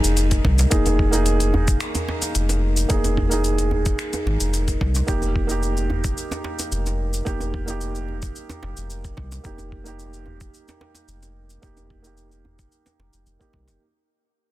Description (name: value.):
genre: organic downtempo.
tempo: 110 BPM.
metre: 4/4.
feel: straight.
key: unclear.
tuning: A4 = 440 Hz.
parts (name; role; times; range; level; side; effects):
felt-muted upright piano; accompaniment; 0.0-13.8 s; Bb3 to Ab4; -26 LUFS; right 3 dB; sidechain pumping, low-pass filter, tape echo.
warm sub bass; bass; 0.0-13.8 s; F1 to C2; -22 LUFS; equal; sidechain pumping.
organic electronic drum kit; drums; 0.0-13.8 s; finger snaps, hi-hat, shaker; -29 LUFS; left 2 dB; soft clipping on snare.
bronze singing bowl; texture; 0.0-13.8 s; Eb4; -35 LUFS; left 9 dB; none.
electronic kick drum; drums; 0.3-13.6 s; none; -24 LUFS; equal; none.
djembe; percussion; 0.3-13.8 s; none; -30 LUFS; right 1 dB; none.
room: studio reverb.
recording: dense, heavily limited modern master.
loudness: -19 LUFS.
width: side -16 dB against mid.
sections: 0.0-13.8 A section.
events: fade-out 0.0-13.8.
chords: 0.0 Fm7; 5.1 Eb/F.